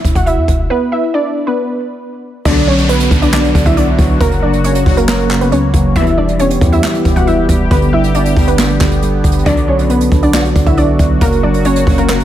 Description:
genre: hip hop, trap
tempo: 137 BPM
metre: 4/4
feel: half-time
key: B harmonic minor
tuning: A4 = 440 Hz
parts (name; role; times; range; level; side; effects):
- warbly dusty pluck; melody; 0.0-12.2 s; A#3 to F#5; -15 LUFS; equal; chorus, low-pass filter
- hard-hitting 808-style bass; bass; 0.0-12.2 s; E1 to E2; -16 LUFS; equal; none
- jazz brush drum kit; drums; 0.0-12.2 s; handclaps, hi-hat, kick drum, snare drum; -15 LUFS; equal; none
- tine electric piano; accompaniment; 2.5-12.2 s; C#3 to E5; -17 LUFS; right 2 dB; low-pass filter
- sweeping resonant pad; sustained chords; 2.5-12.2 s; C#3 to G4; -20 LUFS; equal; chorus
- warm symphonic string section; stabs; 2.5-2.8, 6.0-6.3, 9.5-9.8 s; G2 to F#3; -23 LUFS; left 6 dB; digital delay
- downlifter; sound effects; 2.5-6.0 s; none; -23 LUFS; equal; none
room: small room ambience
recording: none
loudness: -10 LUFS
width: side -12 dB against mid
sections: 0.0-2.5 A section; 2.5-12.2 B section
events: break 0.7-2.5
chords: 0.0 Dadd9/E (rootless); 0.7 Bmadd11; 2.5 Bm; 4.2 F#; 6.0 Em; 7.7 G; 9.5 Bm; 11.2 F#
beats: 0.26 | 0.70 1.14 1.58 2.02 | 2.45 2.89 3.33 3.77 | 4.21 4.64 5.08 5.52 | 5.96 6.39 6.83 7.27 | 7.71 8.15 8.59 9.02 | 9.46 9.90 10.34 10.78 | 11.21 11.65 12.09

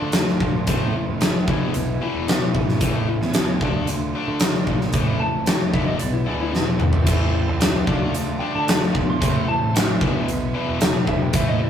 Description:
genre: classic rock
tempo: 112 BPM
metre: 4/4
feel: straight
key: A minor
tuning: A4 = 442 Hz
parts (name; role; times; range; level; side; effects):
- electric slide guitar; melody; 0.0-11.7 s; E4 to C6; -29 LUFS; left 2 dB; none
- overdriven electric guitar; riff; 0.0-11.7 s; E2 to F4; -30 LUFS; right 4 dB; none
- tight distorted guitar; riff; 0.0-11.7 s; E2 to D4; -27 LUFS; left 3 dB; distortion
- fuzz picked electric bass; bass; 0.0-11.7 s; E1 to D3; -28 LUFS; right 1 dB; overdrive
- huge arena drum kit; drums; 0.1-11.5 s; crash cymbal, hi-hat, kick drum, snare drum, toms; -20 LUFS; equal; none
- bright tonewheel organ; sustained chords; 6.8-11.7 s; A3 to D5; -37 LUFS; right 1 dB; none
room: light reverb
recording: rough rehearsal-room recording, tube saturation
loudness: -18 LUFS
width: side -9 dB against mid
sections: 0.0-11.7 A section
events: drum fill 6.5-7.1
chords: 0.0 Dm; 0.7 Am; 1.5 E; 2.8 Am; 3.6 Dm; 4.9 Am; 5.7 E; 7.1 Am; 7.9 Dm; 9.2 Am; 10.0 E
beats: 0.13 | 0.67 1.20 1.74 2.27 | 2.81 3.34 3.88 4.41 | 4.95 5.48 6.01 6.54 | 7.08 7.61 8.14 8.68 | 9.21 9.74 10.27 10.81 | 11.34

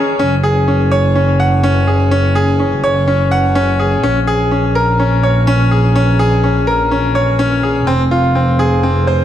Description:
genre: piano and strings electronica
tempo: 125 BPM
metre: 4/4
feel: straight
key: unclear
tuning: A4 = 440 Hz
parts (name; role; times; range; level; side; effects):
- bright grand piano; riff; 0.0-9.2 s; C4 to Gb5; -14 LUFS; left 1 dB; ping-pong delay
- warm symphonic double bass section; bass; 0.2-9.2 s; F1 to Bb1; -14 LUFS; right 1 dB; none
room: moderate echo chamber reverb, RT60 1.8 s, studio ambience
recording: none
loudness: -11 LUFS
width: side -11 dB against mid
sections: 0.2-9.2 A section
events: drop 0.2-9.2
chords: 0.2 Gbsus2; 4.0 Bbm7; 7.9 Fm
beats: | 0.20 0.68 1.16 1.64 | 2.12 2.60 3.08 3.56 | 4.04 4.51 5.00 5.47 | 5.96 6.43 6.92 7.39 | 7.88 8.36 8.84

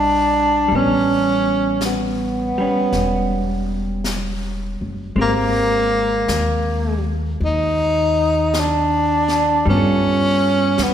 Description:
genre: jazz ballad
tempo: 54 BPM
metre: 4/4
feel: swing 69% on 8ths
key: unclear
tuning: A4 = 441 Hz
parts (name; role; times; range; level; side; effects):
- breathy tenor saxophone; melody; 0.0-10.9 s; Bb3 to Eb4; -18 LUFS; equal; none
- vintage hollow-body jazz guitar; accompaniment; 0.0-10.9 s; Eb3 to Bb4; -22 LUFS; right 1 dB; none
- upright bass; bass; 0.0-10.9 s; E1 to G2; -24 LUFS; left 1 dB; none
- jazz brush drum kit; drums; 0.7-10.9 s; brushed snare drum, hi-hat, snare drum; -31 LUFS; left 2 dB; none
room: wet concert hall reverb, RT60 2.0 s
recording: recorded in a church or concert hall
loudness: -16 LUFS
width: side -9 dB against mid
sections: 0.0-10.9 A section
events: none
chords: 0.0 Ebmaj7; 0.7 A9; 5.2 Abmaj9; 9.7 G9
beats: | 0.70 1.81 2.93 4.05 | 5.16 6.28 7.40 8.53 | 9.65 10.78

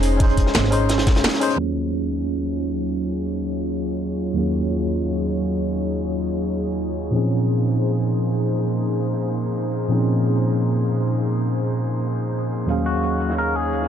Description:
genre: liquid drum and bass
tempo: free time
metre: none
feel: none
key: Eb dorian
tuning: A4 = 440 Hz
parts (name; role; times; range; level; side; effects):
- tine electric piano; accompaniment; 0.0-13.9 s; Eb2 to F5; -21 LUFS; equal; medium stereo tremolo, tape echo
- airy breathy pad; sustained chords; 0.0-13.9 s; Gb3 to F5; -27 LUFS; equal; chorus, sidechain pumping
- upright bass; bass; 0.0-1.2 s; F1 to Ab1; -22 LUFS; equal; none
- crunchy breakbeat drum kit; drums; 0.0-1.6, 12.7-13.9 s; hi-hat, snare drum; -29 LUFS; equal; high-pass filter on hats, high-pass filter on snare, high-pass filter on room
- drum and bass drum kit; drums; 0.0-1.5 s; hi-hat, snare drum; -28 LUFS; equal; none
- electronic kick drum; drums; 0.2-1.1 s; none; -18 LUFS; equal; none
- electric guitar at the edge of break-up; melody; 12.9-13.9 s; Gb4 to Bb4; -24 LUFS; left 3 dB; tape echo
room: moderate huge ambient reverb, RT60 6.4 s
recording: dark, warm production, low-pass filter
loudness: -19 LUFS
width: side -9 dB against mid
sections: 0.0-1.6 A section; 1.6-13.9 B section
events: band accent 1.2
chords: 0.0 Bbm11 (rootless); 1.6 Ebm11; 7.1 Bbm11; 12.7 Ebm11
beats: free time

